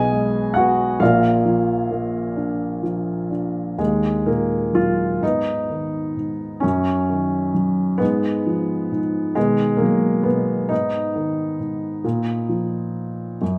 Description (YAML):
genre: classical, lyrical solo piano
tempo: 42-45 BPM (dotted quarters)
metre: 6/8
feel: rubato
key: Eb minor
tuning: A4 = 439 Hz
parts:
  - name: dark upright piano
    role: solo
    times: 0.0-13.6 s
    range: Bb1 to Ab5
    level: -21 LUFS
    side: equal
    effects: none
room: moderate recital hall reverb, RT60 1.7 s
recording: none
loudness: -21 LUFS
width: mono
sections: 0.0-3.8 A section; 3.8-13.6 B section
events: none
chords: 0.0 Abm/Cb; 1.0 Bb; 3.8 Ebm; 5.2 Abm; 6.6 Ebm/Gb; 8.0 Fdim/Ab; 9.4 B; 10.7 Abm; 12.0 Bbsus4